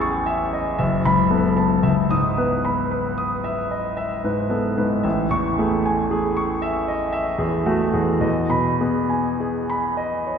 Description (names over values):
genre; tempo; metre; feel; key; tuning
classical, impressionist solo piano; 51-60 BPM; 3/4; rubato; unclear; A4 = 439 Hz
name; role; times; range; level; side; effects
clear concert grand piano; solo; 0.0-10.4 s; F#1 to A6; -19 LUFS; equal; none
room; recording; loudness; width
wet scoring stage reverb, RT60 1.9 s; recorded in a church or concert hall; -19 LUFS; side -7 dB against mid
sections
0.0-10.4 A section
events
none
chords
0.0 Amaj7; 0.8 F#m7; 1.9 C#m9; 5.1 Amaj7; 8.2 Emaj7